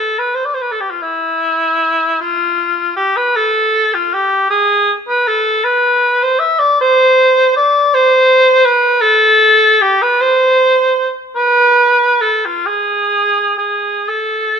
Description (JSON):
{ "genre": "classical, free, expressive piece for unaccompanied cor anglais", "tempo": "40-55 BPM (dotted quarters)", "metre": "6/8", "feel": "rubato", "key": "A minor", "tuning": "A4 = 436 Hz", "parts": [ { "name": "warm cor anglais", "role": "solo", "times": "0.0-14.6 s", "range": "E4 to E5", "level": "-10 LUFS", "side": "equal", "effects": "none" } ], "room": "light reverb", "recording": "close, detailed microphones", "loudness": "-10 LUFS", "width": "side -7 dB against mid", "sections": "0.0-14.6 A section", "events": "none", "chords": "none" }